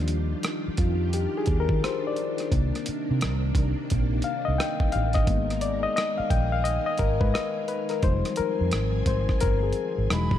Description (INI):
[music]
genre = R&B, neo-soul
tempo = 87 BPM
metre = 4/4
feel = swing 62% on 16ths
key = unclear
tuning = A4 = 441 Hz
[part]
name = reed electric piano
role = accompaniment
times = 0.0-10.4 s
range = Eb3 to G5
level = -28 LUFS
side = left 6 dB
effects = none
[part]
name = string machine, violins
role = sustained chords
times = 0.0-10.4 s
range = C3 to Ab5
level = -33 LUFS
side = right 1 dB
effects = ensemble chorus
[part]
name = vintage muted fingered electric bass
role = bass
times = 0.0-10.4 s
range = E1 to Eb3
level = -26 LUFS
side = right 1 dB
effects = none
[part]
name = dusty soul sampler-style drum kit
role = drums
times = 0.1-10.4 s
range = hi-hat, kick drum, rim click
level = -27 LUFS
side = right 1 dB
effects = overdrive
[part]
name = breathy mellow silver concert flute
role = melody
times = 10.1-10.4 s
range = B5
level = -32 LUFS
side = right 3 dB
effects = none
[sound]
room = light reverb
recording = dark, warm production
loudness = -23 LUFS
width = side -11 dB against mid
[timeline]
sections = 0.0-10.4 A section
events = reed electric piano solo 0.0-10.4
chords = 0.0 Ebmaj9; 2.5 Cm9; 5.3 Abmadd9; 8.0 Fm7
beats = 0.44 1.13 1.82 | 2.51 3.20 3.89 4.58 | 5.27 5.96 6.65 7.34 | 8.03 8.72 9.41 10.10